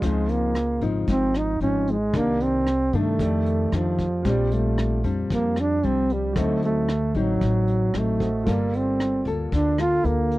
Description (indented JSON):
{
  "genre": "bossa nova",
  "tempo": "114 BPM",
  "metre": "4/4",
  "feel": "straight",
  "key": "unclear",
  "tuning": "A4 = 444 Hz",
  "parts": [
    { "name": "mellow trombone", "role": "melody", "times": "0.0-10.4 s", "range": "F3 to F4", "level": "-23 LUFS", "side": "right 2 dB", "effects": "none" },
    { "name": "clear grand piano", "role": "accompaniment", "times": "0.0-10.4 s", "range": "F4 to Eb5", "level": "-36 LUFS", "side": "right 2 dB", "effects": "none" },
    { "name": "nylon-string guitar", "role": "accompaniment", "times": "0.0-10.4 s", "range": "F2 to A4", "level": "-27 LUFS", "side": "left 4 dB", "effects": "none" },
    { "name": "upright bass", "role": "bass", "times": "0.0-10.4 s", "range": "G1 to G2", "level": "-26 LUFS", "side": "equal", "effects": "none" },
    { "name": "vintage brush drum kit", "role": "drums", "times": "0.0-10.4 s", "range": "hi-hat, kick drum, rim click", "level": "-31 LUFS", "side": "left 1 dB", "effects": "none" }
  ],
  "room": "light reverb",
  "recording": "dry, close 1970s-style studio recording",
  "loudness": "-20 LUFS",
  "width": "side -18 dB against mid",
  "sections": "0.0-10.4 A section",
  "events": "none",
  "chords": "0.0 Dbmaj9; 2.1 Cm9; 3.2 F13; 4.2 Bb69; 6.4 D7b9; 8.5 Gm9",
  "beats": "| 0.02 0.55 1.08 1.61 | 2.13 2.66 3.19 3.72 | 4.25 4.78 5.30 5.83 | 6.36 6.89 7.42 7.95 | 8.47 9.00 9.53 10.05"
}